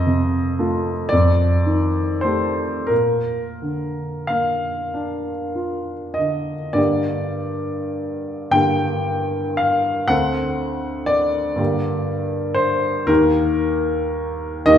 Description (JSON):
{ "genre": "classical, romantic nocturne for solo piano", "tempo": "28-41 BPM (dotted quarters)", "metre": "6/8", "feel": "rubato", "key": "Bb major, G minor from 6.8 s", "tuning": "A4 = 441 Hz", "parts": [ { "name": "warm grand piano", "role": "solo", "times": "0.0-14.8 s", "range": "D2 to G5", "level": "-18 LUFS", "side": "equal", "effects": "none" } ], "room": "wet recital hall reverb, RT60 1.8 s", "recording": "heard from further back in the room", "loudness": "-18 LUFS", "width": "side -9 dB against mid", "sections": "0.0-6.8 A section; 6.8-14.8 B section", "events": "none", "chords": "0.0 F7; 1.1 F9; 2.9 Bb; 6.8 Gm; 10.1 D7; 11.6 Gm; 13.1 Eb", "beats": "1.12 | 2.90 4.94 | 6.78 8.56 | 10.12 11.59 | 13.09 14.68" }